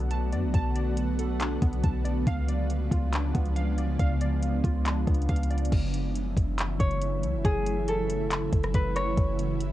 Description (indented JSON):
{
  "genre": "hip hop, atmospheric cloud-rap",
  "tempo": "139 BPM",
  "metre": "4/4",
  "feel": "half-time",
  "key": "F# minor",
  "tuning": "A4 = 441 Hz",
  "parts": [
    { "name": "ethereal airy pad", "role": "sustained chords", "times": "0.0-9.7 s", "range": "C#3 to F#4", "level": "-32 LUFS", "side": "right 1 dB", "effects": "ensemble chorus, built-in reverb, sidechain pumping, cassette tape" },
    { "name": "glassy digital keys", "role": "arpeggios", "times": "0.0-5.7 s", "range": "B3 to A5", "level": "-36 LUFS", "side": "equal", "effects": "chorus, cassette tape, analog delay" },
    { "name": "warm 808-style bass", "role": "bass", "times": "0.0-9.7 s", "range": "F#1 to F#2", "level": "-28 LUFS", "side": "equal", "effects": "none" },
    { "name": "smooth R&B drum kit", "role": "drums", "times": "0.0-9.7 s", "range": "crash cymbal, handclaps, hi-hat, kick drum, rim click", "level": "-28 LUFS", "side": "equal", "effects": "cassette tape" },
    { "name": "concert harp", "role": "melody", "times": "6.8-9.7 s", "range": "G#4 to C#5", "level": "-30 LUFS", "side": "equal", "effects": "cassette tape, analog delay" }
  ],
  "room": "little or no reverb",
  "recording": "home recording on cassette",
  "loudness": "-24 LUFS",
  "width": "side -14 dB against mid",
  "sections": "0.0-5.7 A section; 5.7-9.7 B section",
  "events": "none",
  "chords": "0.0 Bm7; 2.3 C#7b9; 5.7 F#m7"
}